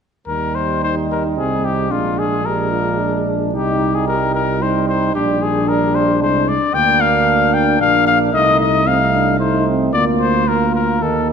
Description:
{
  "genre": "classical, brass quintet",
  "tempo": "112 BPM",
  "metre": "3/4",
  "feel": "rubato",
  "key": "Eb major, Bb major from 6.7 s",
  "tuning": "A4 = 443 Hz",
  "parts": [
    { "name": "clear trumpet", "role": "melody", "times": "0.3-11.3 s", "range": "F4 to G5", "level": "-18 LUFS", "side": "left 6 dB", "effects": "none" },
    { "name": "mellow flugelhorn", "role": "second line", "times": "0.3-11.3 s", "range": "D4 to F4", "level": "-24 LUFS", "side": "right 7 dB", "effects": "none" },
    { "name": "clear trombone", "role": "accompaniment", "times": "0.3-11.3 s", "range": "G3 to Bb3", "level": "-24 LUFS", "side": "right 6 dB", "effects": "none" },
    { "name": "mellow tuba", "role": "bass", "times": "0.3-11.3 s", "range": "Bb1 to Eb2", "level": "-21 LUFS", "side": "right 5 dB", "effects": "none" },
    { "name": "mellow French horn", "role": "accompaniment", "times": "0.8-11.3 s", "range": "Bb3 to G4", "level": "-21 LUFS", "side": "left 3 dB", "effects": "none" }
  ],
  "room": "moderate concert hall reverb, RT60 1.9 s",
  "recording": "none",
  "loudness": "-14 LUFS",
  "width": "side -6 dB against mid",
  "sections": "0.3-11.3 A section",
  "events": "none",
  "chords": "0.3 Eb; 1.9 Bb7; 3.5 Cm; 5.2 Gm/Bb; 6.7 Bb/D; 8.3 F7/C; 9.9 Bb/D"
}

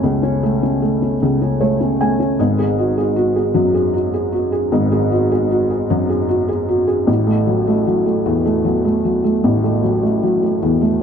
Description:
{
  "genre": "pop",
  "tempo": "51 BPM (dotted quarters)",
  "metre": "6/8",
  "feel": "straight",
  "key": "F# minor",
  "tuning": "A4 = 435 Hz",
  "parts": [
    { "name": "felt-muted upright piano", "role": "solo", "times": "0.0-11.0 s", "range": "G#1 to G#5", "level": "-14 LUFS", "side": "equal", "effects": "ping-pong delay" }
  ],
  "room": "moderate echo chamber reverb, RT60 1.4 s",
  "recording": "dark, warm production",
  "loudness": "-14 LUFS",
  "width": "side -7 dB against mid",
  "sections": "0.0-11.0 A section",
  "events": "felt piano fill 1.2-2.4, 10.6-11.0",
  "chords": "0.0 F#m; 2.4 F#sus2/G#; 7.1 F#m7/A"
}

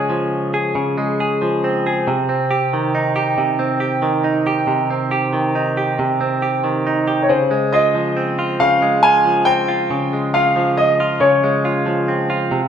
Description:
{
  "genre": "pop",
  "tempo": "46 BPM (dotted quarters)",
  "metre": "6/8",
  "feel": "straight",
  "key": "unclear",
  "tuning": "A4 = 441 Hz",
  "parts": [
    { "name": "clear concert grand piano", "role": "melody", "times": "0.0-1.6, 7.2-12.1 s", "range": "C5 to Ab5", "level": "-16 LUFS", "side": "left 1 dB", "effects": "none" },
    { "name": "direct-recorded clean electric guitar", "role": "accompaniment", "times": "0.0-12.7 s", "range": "C3 to Ab4", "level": "-17 LUFS", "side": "right 1 dB", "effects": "none" }
  ],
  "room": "wet stone room reverb, RT60 1.2 s",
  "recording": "band playing live in one room",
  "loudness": "-15 LUFS",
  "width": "side -8 dB against mid",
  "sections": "0.0-12.7 A section",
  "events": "none",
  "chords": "0.0 Dbmaj7; 2.1 Cm; 7.3 Dbmaj7"
}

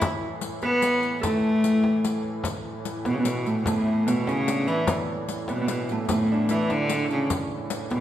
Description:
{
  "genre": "medieval dance",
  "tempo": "99 BPM (dotted quarters)",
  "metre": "6/8",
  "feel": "straight",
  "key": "A major",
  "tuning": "A4 = 440 Hz",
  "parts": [
    { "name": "Celtic harp", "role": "second line", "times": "0.0-8.0 s", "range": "A3 to B4", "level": "-28 LUFS", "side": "right 3 dB", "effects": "none" },
    { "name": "pipe organ, strings celeste", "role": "drone", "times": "0.0-8.0 s", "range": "A2 to E3", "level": "-34 LUFS", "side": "equal", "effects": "none" },
    { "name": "frame drum", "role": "percussion", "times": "0.0-8.0 s", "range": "none", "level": "-31 LUFS", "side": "left 2 dB", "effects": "none" },
    { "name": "riq", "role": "percussion", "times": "0.0-8.0 s", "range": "none", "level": "-34 LUFS", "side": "left 6 dB", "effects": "none" },
    { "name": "rich viola da gamba", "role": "melody", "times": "0.6-8.0 s", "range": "A2 to B3", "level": "-25 LUFS", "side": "left 1 dB", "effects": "none" }
  ],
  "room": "wet recital hall reverb, RT60 1.4 s",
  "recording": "none",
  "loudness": "-22 LUFS",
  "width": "side -12 dB against mid",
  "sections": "0.0-2.4 A section; 2.4-8.0 A section",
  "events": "none",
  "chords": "none"
}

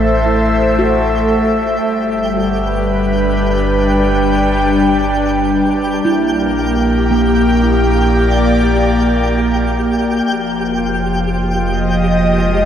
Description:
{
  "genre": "ambient",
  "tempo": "57 BPM",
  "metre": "4/4",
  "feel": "straight",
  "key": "unclear",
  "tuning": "A4 = 441 Hz",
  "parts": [
    { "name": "airy breathy pad", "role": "sustained chords", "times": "0.0-12.7 s", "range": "F3 to G5", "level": "-14 LUFS", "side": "equal", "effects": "chorus" },
    { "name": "handpan", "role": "arpeggios", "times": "0.0-10.5 s", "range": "Bb3 to F#4", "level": "-22 LUFS", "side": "right 3 dB", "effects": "tape echo" },
    { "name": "warm sub bass", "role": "bass", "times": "0.0-12.7 s", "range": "F1 to Bb1", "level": "-19 LUFS", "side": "equal", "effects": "none" },
    { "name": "twinkling granular texture", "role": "texture", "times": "0.0-12.7 s", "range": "G4 to G6", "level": "-24 LUFS", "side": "left 1 dB", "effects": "built-in reverb" }
  ],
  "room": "wet cathedral reverb, RT60 5.2 s",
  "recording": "in a vast, echoing space",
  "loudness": "-12 LUFS",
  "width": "side -9 dB against mid",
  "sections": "0.0-12.7 A section",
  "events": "fade-in on synth texture 0.0-12.7",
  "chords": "0.0 Am; 1.9 G; 6.1 Bb6; 10.3 Fm7"
}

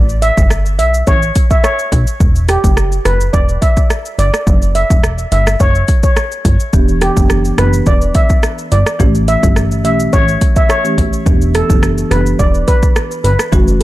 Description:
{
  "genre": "dancehall",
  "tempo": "106 BPM",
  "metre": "4/4",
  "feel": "straight",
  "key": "E dorian",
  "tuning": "A4 = 437 Hz",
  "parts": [
    { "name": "plucky analog bass", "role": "bass", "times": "0.0-13.8 s", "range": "E1 to B1", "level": "-14 LUFS", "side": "equal", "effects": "none" },
    { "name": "afro-pop drum kit", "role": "drums", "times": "0.1-13.8 s", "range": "hi-hat, kick drum, rim click, shaker", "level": "-13 LUFS", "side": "equal", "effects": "overdrive" },
    { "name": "steel pan", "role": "melody", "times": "0.2-13.8 s", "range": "G4 to E5", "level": "-17 LUFS", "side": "equal", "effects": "tape echo" },
    { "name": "marimba with soft mallets", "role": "accompaniment", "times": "6.7-13.7 s", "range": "E3 to G4", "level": "-18 LUFS", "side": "equal", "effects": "none" }
  ],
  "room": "digital ambience",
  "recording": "dark, warm production",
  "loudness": "-10 LUFS",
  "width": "side -16 dB against mid",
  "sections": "0.0-13.8 A section",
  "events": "none",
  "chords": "0.0 Gadd9; 2.2 Emadd9; 6.7 Em7; 9.0 A7; 11.3 Em7"
}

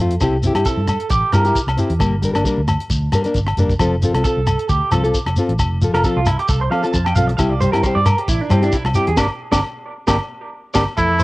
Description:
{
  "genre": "highlife guitar band",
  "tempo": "134 BPM",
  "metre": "4/4",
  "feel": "swing 55% on 16ths",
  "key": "F major",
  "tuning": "A4 = 440 Hz",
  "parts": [
    { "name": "nylon-string guitar", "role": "accompaniment", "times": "0.0-11.2 s", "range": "E3 to Bb4", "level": "-20 LUFS", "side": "left 2 dB", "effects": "cassette tape" },
    { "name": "fingered electric bass", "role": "bass", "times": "0.0-11.2 s", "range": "F1 to G2", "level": "-20 LUFS", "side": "equal", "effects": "none" },
    { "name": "tight funk drum kit", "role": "drums", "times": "0.1-11.2 s", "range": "hi-hat, kick drum, rim click, snare drum", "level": "-23 LUFS", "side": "equal", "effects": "cassette tape" },
    { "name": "agogo bells", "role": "percussion", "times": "0.2-10.9 s", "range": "none", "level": "-26 LUFS", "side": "left 2 dB", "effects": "none" },
    { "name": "shekere", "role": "percussion", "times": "0.2-11.2 s", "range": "none", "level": "-21 LUFS", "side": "equal", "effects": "none" },
    { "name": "electric guitar through a small old amp", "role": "arpeggios", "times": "0.7-11.2 s", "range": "C4 to A5", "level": "-22 LUFS", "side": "right 3 dB", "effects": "cassette tape, tape echo" },
    { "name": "trumpet with straight mute", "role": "melody", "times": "11.0-11.2 s", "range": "E4", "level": "-15 LUFS", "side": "equal", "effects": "none" }
  ],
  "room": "small room ambience",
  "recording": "home recording on cassette",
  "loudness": "-15 LUFS",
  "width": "side -20 dB against mid",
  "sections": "0.0-11.0 A section",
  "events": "clean electric guitar solo 0.0-11.0; drum fill 9.2-11.0; band accent 9.2-11.0",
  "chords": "0.2 C; 2.0 Gm; 3.8 F; 7.4 C; 9.2 Gm"
}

